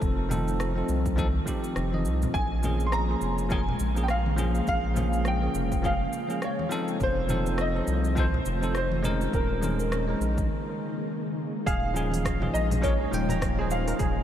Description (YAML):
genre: sunset chillout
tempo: 103 BPM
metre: 4/4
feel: swing 58% on 16ths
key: Bb dorian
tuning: A4 = 440 Hz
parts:
  - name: bell-like tine electric piano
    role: accompaniment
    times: 0.0-14.2 s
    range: F3 to G5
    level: -31 LUFS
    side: equal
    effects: auto-pan, diffuse ambient delay
  - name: ethereal airy pad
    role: sustained chords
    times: 0.0-14.2 s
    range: Db3 to G5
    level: -34 LUFS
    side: equal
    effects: ensemble chorus, built-in reverb, vintage 12-bit sampler grit
  - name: round analog bass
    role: bass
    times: 0.0-14.2 s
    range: Eb1 to C2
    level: -28 LUFS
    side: equal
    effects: none
  - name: deep house drum kit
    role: drums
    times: 0.0-14.1 s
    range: hi-hat, rim click, shaker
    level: -40 LUFS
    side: equal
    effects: none
  - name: electronic kick drum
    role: drums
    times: 0.0-14.1 s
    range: none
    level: -30 LUFS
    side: equal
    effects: none
  - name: congas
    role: percussion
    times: 0.3-13.4 s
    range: none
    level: -37 LUFS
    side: left 2 dB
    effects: none
  - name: warm grand piano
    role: melody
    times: 2.3-14.2 s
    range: Bb4 to C6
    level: -31 LUFS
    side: equal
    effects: analog chorus, diffuse ambient delay
  - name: steel pan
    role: arpeggios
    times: 11.7-14.1 s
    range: Ab4 to Bb5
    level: -36 LUFS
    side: right 3 dB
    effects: diffuse ambient delay
room: moderate huge ambient reverb, RT60 7.7 s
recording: dreamy mix soaked in reverb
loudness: -24 LUFS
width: side -10 dB against mid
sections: 0.0-11.7 A section; 11.7-14.2 B section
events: break 10.5-11.7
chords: 0.0 F7; 2.3 Bbm7; 7.0 F7; 9.3 Eb7sus4; 11.7 Eb9sus4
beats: | 0.01 0.60 1.18 1.76 | 2.34 2.93 3.51 4.09 | 4.67 5.26 5.84 6.42 | 7.00 7.59 8.17 8.75 | 9.33 9.92 10.50 11.08 | 11.66 12.25 12.83 13.41 | 13.99